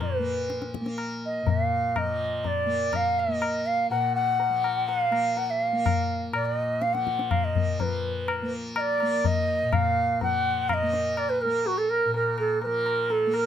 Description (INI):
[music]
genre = indian classical, Hindustani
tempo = 124 BPM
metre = 4/4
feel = straight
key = unclear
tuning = A4 = 439 Hz
[part]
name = reedy bansuri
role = melody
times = 0.0-13.5 s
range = Gb4 to Gb5+31c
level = -25 LUFS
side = right 1 dB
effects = none
[part]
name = tanpura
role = drone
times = 0.0-13.5 s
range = Bb2 to Bb3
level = -32 LUFS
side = left 1 dB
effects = none
[part]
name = tabla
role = percussion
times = 0.0-13.5 s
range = none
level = -30 LUFS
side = left 6 dB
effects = none
[sound]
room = light reverb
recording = close, detailed microphones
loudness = -23 LUFS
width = side -9 dB against mid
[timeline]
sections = 0.0-7.8 A section; 7.8-13.5 B section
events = none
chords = none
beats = | 0.00 0.49 0.98 1.47 | 1.96 2.45 2.93 3.42 | 3.91 4.39 4.88 5.37 | 5.85 6.34 6.82 7.31 | 7.79 8.28 8.76 9.24 | 9.73 10.21 10.69 11.17 | 11.65 12.13 12.62 13.10